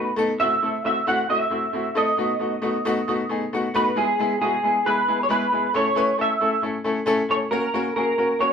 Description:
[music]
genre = soul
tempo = 135 BPM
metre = 4/4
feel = straight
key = E major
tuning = A4 = 440 Hz
[part]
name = electric guitar through a small old amp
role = melody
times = 0.0-8.5 s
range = G#4 to F#5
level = -21 LUFS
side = right 1 dB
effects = ensemble chorus
[part]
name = bright baby grand piano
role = accompaniment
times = 0.0-8.5 s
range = G#3 to B5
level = -24 LUFS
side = left 2 dB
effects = none
[sound]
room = moderate studio reverb, RT60 0.7 s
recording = none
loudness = -20 LUFS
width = side -7 dB against mid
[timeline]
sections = 0.0-4.0 A section; 4.0-8.5 B section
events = grand piano fill 3.3-4.0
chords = 0.4 Am6; 2.2 B7; 4.0 E; 5.7 A; 7.5 F#

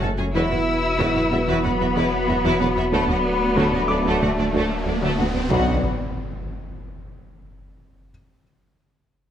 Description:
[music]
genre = cinematic, hybrid orchestral and electronic film score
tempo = 93 BPM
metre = 4/4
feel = straight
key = B minor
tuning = A4 = 439 Hz
[part]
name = rich chamber violin section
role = melody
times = 0.0-5.9 s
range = A5 to E6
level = -28 LUFS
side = left 8 dB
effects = low-pass filter
[part]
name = rich symphonic violin section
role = second line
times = 0.0-5.9 s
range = A3 to A5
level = -28 LUFS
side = left 2 dB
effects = none
[part]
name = rich symphonic viola section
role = accompaniment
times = 0.0-5.9 s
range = F#3 to F#4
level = -30 LUFS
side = right 1 dB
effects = low-pass filter
[part]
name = dark French horn section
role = sustained chords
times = 0.0-5.8 s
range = A3 to F#4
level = -30 LUFS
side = left 3 dB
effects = low-pass filter
[part]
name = hollow soft pad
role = sustained chords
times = 0.0-5.9 s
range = F#3 to D5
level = -30 LUFS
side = equal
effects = chorus, low-pass filter
[part]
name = mellow trombone section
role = sustained chords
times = 0.0-5.8 s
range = F#3 to B3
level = -32 LUFS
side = right 4 dB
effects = none
[part]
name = warbly dusty pluck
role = arpeggios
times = 0.0-5.4 s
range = D3 to F#4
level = -32 LUFS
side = left 3 dB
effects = none
[part]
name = mellow tuba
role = bass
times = 0.0-5.8 s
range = E1 to D2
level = -29 LUFS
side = right 3 dB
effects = none
[part]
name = rich studio double bass section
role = bass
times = 0.0-5.9 s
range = B1 to F#2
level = -28 LUFS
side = right 2 dB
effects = none
[part]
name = warm sub bass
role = bass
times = 0.0-5.9 s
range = D1 to B1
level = -30 LUFS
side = equal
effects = none
[part]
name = warm baby grand piano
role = texture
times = 0.0-5.5 s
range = D6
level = -33 LUFS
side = equal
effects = none
[part]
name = rich symphonic cello section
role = bass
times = 0.3-5.9 s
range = A3 to E4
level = -26 LUFS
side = right 1 dB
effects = none
[part]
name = riser and impact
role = sound effects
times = 3.1-8.1 s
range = none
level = -30 LUFS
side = equal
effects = none
[sound]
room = moderate recital hall reverb, RT60 1.6 s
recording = close, detailed microphones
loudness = -18 LUFS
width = side -9 dB against mid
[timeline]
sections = 0.0-5.5 A section; 5.5-8.1 B section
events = filter sweep 0.0-5.5; riser 3.1-5.5; impact 5.5-8.1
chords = 0.3 Esus2; 2.9 D; 5.5 Bm

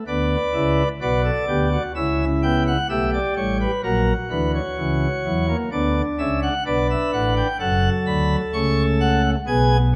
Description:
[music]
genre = classical, baroque-style 4-part fugue for pipe organ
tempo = 64 BPM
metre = 4/4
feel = straight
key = B minor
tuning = A4 = 440 Hz
[part]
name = pipe organ, sparkling flutes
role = solo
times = 0.0-10.0 s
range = F#1 to C#6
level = -21 LUFS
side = equal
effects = none
[sound]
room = moderate scoring stage reverb, RT60 1.6 s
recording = none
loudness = -21 LUFS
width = mono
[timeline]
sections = 0.1-10.0 A section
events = none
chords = 0.1 Bm; 2.0 C#dim; 3.8 F#7/A#; 5.7 Bm; 7.6 F#m

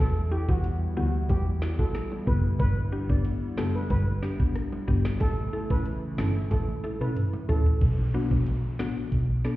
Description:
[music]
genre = dancehall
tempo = 92 BPM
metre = 4/4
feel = straight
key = unclear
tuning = A4 = 436 Hz
[part]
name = steel pan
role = melody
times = 0.0-7.6 s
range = F#4 to D5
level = -36 LUFS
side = right 1 dB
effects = tape echo
[part]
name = hollow soft pad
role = sustained chords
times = 0.0-7.8 s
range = C#3 to E4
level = -37 LUFS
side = right 1 dB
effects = chorus, sidechain pumping
[part]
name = rich double bass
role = bass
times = 0.0-9.4 s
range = F#1 to E2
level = -27 LUFS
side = equal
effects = none
[part]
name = mallet-like synth pluck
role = accompaniment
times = 0.3-9.6 s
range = B3 to A4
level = -34 LUFS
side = left 3 dB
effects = chorus, sidechain pumping
[part]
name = island pop drum kit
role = drums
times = 0.5-9.6 s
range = hi-hat, kick drum, rim click, snare drum, toms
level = -26 LUFS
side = equal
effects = none
[part]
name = bongos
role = percussion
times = 0.5-7.7 s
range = none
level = -42 LUFS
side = right 2 dB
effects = none
[part]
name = downlifter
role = sound effects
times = 7.8-9.6 s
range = none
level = -38 LUFS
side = left 2 dB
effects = none
[sound]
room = digital ambience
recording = heard muffled through a wall, stone room reverb, EQ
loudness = -24 LUFS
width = side -16 dB against mid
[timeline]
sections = 0.0-7.8 A section; 7.8-9.6 B section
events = drum fill 6.5-7.8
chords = 0.0 Em; 5.2 A; 7.8 Bm

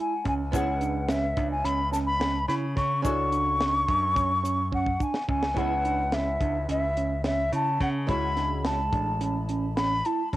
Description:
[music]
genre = progressive instrumental, band music in an uneven meter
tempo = 214 BPM (eighths)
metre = 9/8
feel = straight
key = unclear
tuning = A4 = 442 Hz
[part]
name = breathy mellow concert flute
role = melody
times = 0.0-10.4 s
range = E5 to C#6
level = -27 LUFS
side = left 1 dB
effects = cassette tape, tape echo
[part]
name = archtop guitar, miked and amplified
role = accompaniment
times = 0.0-10.4 s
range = G#3 to A4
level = -35 LUFS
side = left 1 dB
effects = double-tracked left and right
[part]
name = overdriven tine electric piano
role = arpeggios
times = 0.0-10.4 s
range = C#4 to E4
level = -32 LUFS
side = right 6 dB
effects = phaser
[part]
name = modern bright picked electric bass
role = bass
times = 0.3-10.4 s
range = A1 to C#3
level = -30 LUFS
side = equal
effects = none
[part]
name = tight funk drum kit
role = drums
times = 0.3-10.4 s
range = hi-hat, kick drum, snare drum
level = -31 LUFS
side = equal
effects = cassette tape
[part]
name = egg shaker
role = percussion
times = 0.5-5.1 s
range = none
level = -46 LUFS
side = left 9 dB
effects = none
[sound]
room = light reverb, studio ambience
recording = home recording on cassette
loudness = -24 LUFS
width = side -15 dB against mid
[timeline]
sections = 0.0-5.6 A section; 5.6-10.4 B section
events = drum fill 4.7-5.6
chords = 0.0 Dmaj9#11 (rootless); 0.5 C#m7; 3.0 Dmaj7#11/C#; 5.6 E69/C#; 8.1 Dmaj9#11

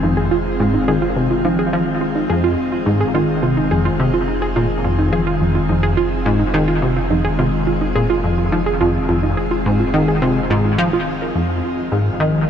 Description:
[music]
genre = ambient, sequencer-driven space music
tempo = 106 BPM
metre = 4/4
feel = straight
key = F minor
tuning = A4 = 440 Hz
[part]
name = evolving wavetable pad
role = sustained chords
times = 0.0-12.5 s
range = Eb3 to Ab4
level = -21 LUFS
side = left 1 dB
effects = phaser, built-in reverb
[part]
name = warbly dusty pluck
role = arpeggios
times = 0.0-11.3 s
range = Eb4 to F5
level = -21 LUFS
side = right 4 dB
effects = chorus, auto-pan, analog delay
[part]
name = plucky analog bass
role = riff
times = 0.0-12.5 s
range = F2 to F3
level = -18 LUFS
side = left 1 dB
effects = lush chorus, analog delay
[part]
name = warm sub bass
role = bass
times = 0.0-12.5 s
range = F1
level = -26 LUFS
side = equal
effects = none
[sound]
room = moderate shimmer reverb, RT60 7.6 s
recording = none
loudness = -15 LUFS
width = side -8 dB against mid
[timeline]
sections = 0.0-11.4 A section; 11.4-12.5 B section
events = filter sweep on analog synth bass 0.0-11.4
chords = 0.0 Fm7

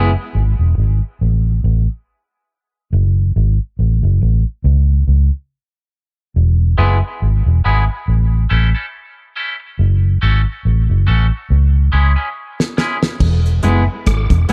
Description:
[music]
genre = dub reggae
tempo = 70 BPM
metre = 4/4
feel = swing 57% on 16ths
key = unclear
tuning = A4 = 442 Hz
[part]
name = clean electric guitar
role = accompaniment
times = 0.0-0.1, 6.8-14.5 s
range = G#3 to A4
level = -24 LUFS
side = equal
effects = high-pass filter, dub echo
[part]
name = vintage muted fingered electric bass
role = bass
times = 0.0-14.5 s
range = E1 to C#2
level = -15 LUFS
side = equal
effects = none
[part]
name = damped 70s drum kit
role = drums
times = 12.6-14.5 s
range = crash cymbal, hi-hat, kick drum, rim click, snare drum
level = -20 LUFS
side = equal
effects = none
[part]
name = mellow electric guitar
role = riff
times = 13.2-14.5 s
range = E2 to G#2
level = -26 LUFS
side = equal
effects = dub echo
[sound]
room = studio ambience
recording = dark, warm production, lossy compression artefacts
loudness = -15 LUFS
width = mono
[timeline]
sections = 0.0-13.2 A section; 13.2-14.5 B section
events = break 0.0-6.3; drum fill 12.4-13.2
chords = 0.0 E; 1.2 N.C.; 2.9 F#m; 4.6 N.C.; 6.3 E; 8.1 A; 9.8 F#m; 11.5 C#m; 13.2 E

